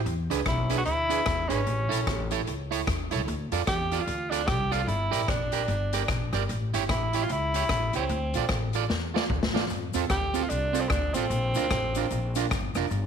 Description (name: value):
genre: ska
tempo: 149 BPM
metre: 4/4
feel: swing 60% on 8ths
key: D minor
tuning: A4 = 441 Hz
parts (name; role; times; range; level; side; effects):
- upright bass; bass; 0.0-13.1 s; F1 to F2; -30 LUFS; left 2 dB; none
- street-band drum kit; drums; 0.1-13.0 s; hi-hat, kick drum, rim click, snare drum, toms; -31 LUFS; left 2 dB; none
- electric guitar at the edge of break-up; accompaniment; 0.3-12.9 s; C4 to D5; -31 LUFS; right 11 dB; slapback echo
- clear tenor saxophone; melody; 0.5-12.7 s; C4 to G4; -29 LUFS; right 1 dB; none
- cabasa; percussion; 9.7-13.0 s; none; -44 LUFS; left 17 dB; none
room: light reverb, small room ambience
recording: 1960s-style stereo with parts hard left and right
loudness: -25 LUFS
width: side -7 dB against mid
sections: 0.0-13.1 A section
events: drum fill 8.9-9.7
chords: 0.1 E7; 1.7 A; 3.3 Dm; 4.9 Gm; 6.5 A7; 8.1 Dm; 9.7 F; 11.3 Bb